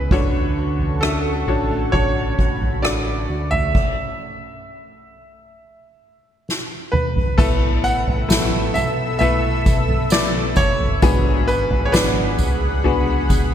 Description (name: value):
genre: pop ballad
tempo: 66 BPM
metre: 4/4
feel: straight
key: A major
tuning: A4 = 440 Hz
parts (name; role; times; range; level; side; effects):
- bright grand piano; melody; 0.0-13.5 s; A4 to F#5; -24 LUFS; right 2 dB; digital delay
- bright baby grand piano; accompaniment; 0.0-13.5 s; G#2 to E5; -24 LUFS; left 4 dB; none
- fingerpicked plugged-in steel-string acoustic guitar; arpeggios; 0.0-4.3 s; E2 to F#4; -31 LUFS; right 3 dB; ensemble chorus
- fingered electric bass with an envelope filter; bass; 0.0-13.5 s; F#1 to D2; -24 LUFS; equal; none
- lush unison pad; sustained chords; 0.7-13.5 s; G#4 to E6; -28 LUFS; equal; chorus
- soft-mallet drum kit; drums; 0.1-13.5 s; crash cymbal, kick drum, rim click, snare drum, toms; -20 LUFS; equal; gated reverb
- tambourine; percussion; 7.4-13.5 s; none; -34 LUFS; right 7 dB; none
room: moderate lush hall reverb, RT60 2.7 s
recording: bright 1980s-style digital production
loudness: -16 LUFS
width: side -10 dB against mid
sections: 0.0-7.4 A section; 7.4-13.5 B section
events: stop 3.8-7.4; drum fill 6.5-7.4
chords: 0.1 Dmaj7; 3.8 N.C.; 7.4 Asus2; 11.0 G#m7b5